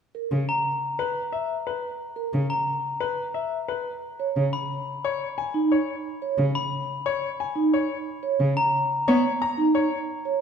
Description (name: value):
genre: classical, minimalist pattern music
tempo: 178 BPM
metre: 6/4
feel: straight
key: C# dorian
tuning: A4 = 439 Hz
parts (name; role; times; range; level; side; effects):
- vibraphone with soft mallets; arpeggios; 0.1-10.4 s; D#4 to C#5; -25 LUFS; right 4 dB; none
- rich cello; accompaniment; 0.3-9.2 s; C#3 to B3; -26 LUFS; equal; none
- glockenspiel with soft plastic mallets; arpeggios; 0.5-8.8 s; A#5 to B5; -29 LUFS; left 2 dB; none
- bright concert grand piano; melody; 1.0-10.0 s; B4 to A#5; -29 LUFS; left 8 dB; none
room: moderate scoring stage reverb, RT60 1.6 s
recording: dark, warm production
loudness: -23 LUFS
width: side -7 dB against mid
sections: 0.0-10.4 A section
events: none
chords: 0.0 N.C.; 4.0 C#sus2; 8.1 Bmaj7 (rootless)